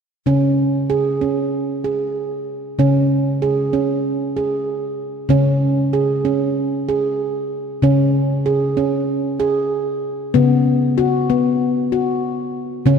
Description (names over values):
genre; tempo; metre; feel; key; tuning
world meditative; 95 BPM; 4/4; straight; unclear; A4 = 440 Hz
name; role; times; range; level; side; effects
handpan; arpeggios; 0.3-13.0 s; C#3 to G#4; -16 LUFS; equal; none
room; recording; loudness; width
moderate plate reverb, RT60 3.2 s; dreamy mix soaked in reverb; -16 LUFS; side -6 dB against mid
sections
0.3-5.3 A section; 5.3-13.0 B section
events
none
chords
0.3 C#5; 10.3 B5/C#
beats
| 0.26 0.89 1.52 2.15 | 2.78 3.41 4.04 4.67 | 5.30 5.93 6.56 7.19 | 7.82 8.45 9.08 9.71 | 10.34 10.97 11.60 12.23 | 12.86